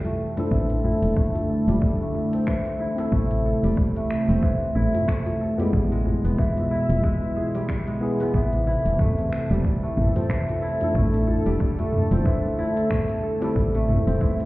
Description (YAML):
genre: organic downtempo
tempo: 92 BPM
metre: 4/4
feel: swing 57% on 16ths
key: A minor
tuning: A4 = 440 Hz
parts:
  - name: warm analog pad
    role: sustained chords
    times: 0.0-14.5 s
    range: B2 to E5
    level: -28 LUFS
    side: equal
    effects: chorus, sidechain pumping
  - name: kora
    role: arpeggios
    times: 0.0-14.5 s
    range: E3 to A4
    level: -27 LUFS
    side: equal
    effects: low-pass filter, ping-pong delay
  - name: deep house drum kit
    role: drums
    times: 0.0-14.5 s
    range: finger snaps, hi-hat, shaker, toms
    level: -27 LUFS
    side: equal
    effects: overdrive
  - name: djembe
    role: percussion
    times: 0.0-14.0 s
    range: none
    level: -32 LUFS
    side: equal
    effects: none
  - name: bronze singing bowl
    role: texture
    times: 0.0-14.5 s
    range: none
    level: barely audible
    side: none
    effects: none
  - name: barky tine electric piano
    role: accompaniment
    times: 0.4-14.5 s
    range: G#3 to A4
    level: -29 LUFS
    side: left 1 dB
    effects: sidechain pumping, ping-pong delay
  - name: woody FM bass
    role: bass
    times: 0.5-14.2 s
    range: E1 to A1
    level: -23 LUFS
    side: equal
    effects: sidechain pumping
  - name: electronic kick drum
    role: drums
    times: 0.5-14.4 s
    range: none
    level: -24 LUFS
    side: equal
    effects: overdrive
room: light reverb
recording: heard muffled through a wall, stone room reverb, EQ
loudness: -20 LUFS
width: side -19 dB against mid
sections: 0.0-14.5 A section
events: filter sweep on kora 0.0-14.5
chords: 0.0 Am; 5.7 E; 8.3 Am